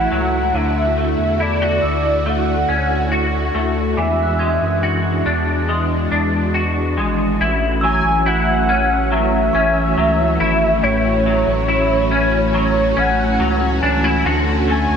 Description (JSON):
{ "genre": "dream pop", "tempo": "70 BPM", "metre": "4/4", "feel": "straight", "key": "A major", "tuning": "A4 = 439 Hz", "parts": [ { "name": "warm velvety synth lead", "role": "melody", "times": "0.0-15.0 s", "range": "C#5 to G#5", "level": "-20 LUFS", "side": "equal", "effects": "chorus, ping-pong delay" }, { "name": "string machine, violas", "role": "sustained chords", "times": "0.0-15.0 s", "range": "D3 to F#4", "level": "-21 LUFS", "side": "equal", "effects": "ensemble chorus" }, { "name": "semi-hollow electric guitar", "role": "arpeggios", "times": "0.0-15.0 s", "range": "A2 to F#4", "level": "-20 LUFS", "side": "left 2 dB", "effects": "ensemble chorus, ping-pong delay" }, { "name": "saturated sub bass", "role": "bass", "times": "0.0-15.0 s", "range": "G#1 to F#2", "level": "-22 LUFS", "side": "equal", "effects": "none" }, { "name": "glockenspiel with rubber mallets", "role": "texture", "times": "0.0-14.6 s", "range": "G#5 to B6", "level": "-30 LUFS", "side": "right 3 dB", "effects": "ping-pong delay" } ], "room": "moderate huge ambient reverb, RT60 6.2 s", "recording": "none", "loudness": "-15 LUFS", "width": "side -7 dB against mid", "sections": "0.0-7.4 A section; 7.4-15.0 B section", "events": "none", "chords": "0.0 A6; 0.5 Dmaj7; 4.0 E9; 14.3 Dmaj7" }